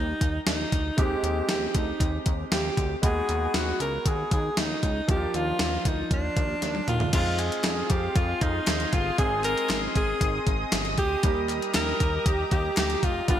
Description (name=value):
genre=1980s-style pop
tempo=117 BPM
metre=4/4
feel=straight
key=Eb major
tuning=A4 = 442 Hz
part: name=clear alto saxophone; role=melody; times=0.0-13.4 s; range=D4 to Bb4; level=-28 LUFS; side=equal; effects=ping-pong delay
part: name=clear concert grand piano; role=accompaniment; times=0.0-13.4 s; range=F3 to D5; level=-33 LUFS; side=right 2 dB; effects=lush chorus
part: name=chorused synth bass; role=bass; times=0.0-13.4 s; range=F1 to F2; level=-31 LUFS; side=equal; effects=none
part: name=gated 80s digital drum machine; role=drums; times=0.2-13.4 s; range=crash cymbal, hi-hat, kick drum, snare drum, toms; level=-26 LUFS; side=equal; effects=gated reverb, gated reverb snare, overdrive
part: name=lush unison pad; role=sustained chords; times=7.1-13.4 s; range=G4 to Eb6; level=-34 LUFS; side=left 1 dB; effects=chorus, phaser
part: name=group handclap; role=percussion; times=7.4-12.9 s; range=none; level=barely audible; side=none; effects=none
room=light reverb, digital ambience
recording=bright 1980s-style digital production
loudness=-23 LUFS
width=side -10 dB against mid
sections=0.0-7.1 A section; 7.1-13.4 B section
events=drum fill 6.6-7.1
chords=0.0 Ebmaj7; 1.0 Abmaj7; 3.0 B6; 5.1 Bb; 7.1 Fm7; 9.2 Ab; 11.2 Eb